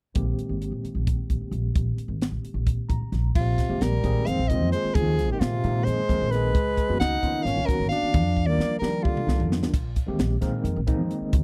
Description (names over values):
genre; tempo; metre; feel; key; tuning
electric jazz fusion; 263 BPM (eighths); 7/8; straight; unclear; A4 = 440 Hz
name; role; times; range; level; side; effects
overdriven tine electric piano; accompaniment; 0.1-11.4 s; Eb3 to Bb5; -34 LUFS; equal; fast tremolo, analog chorus
upright bass; bass; 0.2-11.4 s; Ab1 to F3; -28 LUFS; equal; none
crisp fusion drum kit; drums; 0.2-11.4 s; crash cymbal, hi-hat, kick drum, snare drum, toms; -28 LUFS; equal; none
bright soprano saxophone; melody; 3.4-9.6 s; F4 to Gb5; -30 LUFS; equal; none
bright trombone; second line; 3.4-9.6 s; C3 to Eb4; -33 LUFS; equal; none
room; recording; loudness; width
little or no reverb; dry, close 1970s-style studio recording; -25 LUFS; mono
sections
0.2-3.4 A section; 3.4-11.4 B section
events
tine electric piano fill 2.7-3.4; drum fill 8.4-9.7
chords
0.2 Bb13sus4; 6.5 Db13sus4; 8.1 F13sus4; 9.7 Bb13sus4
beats
| 0.16 0.39 0.61 0.84 1.07 1.30 1.53 | 1.75 1.98 2.21 2.44 2.67 2.90 3.12 | 3.35 3.58 3.81 4.04 4.26 4.49 4.72 | 4.95 5.18 5.40 5.63 5.86 6.09 6.32 | 6.54 6.77 7.00 7.23 7.46 7.68 7.91 | 8.14 8.37 8.59 8.82 9.05 9.28 9.51 | 9.73 9.96 10.19 10.42 10.64 10.87 11.10 | 11.33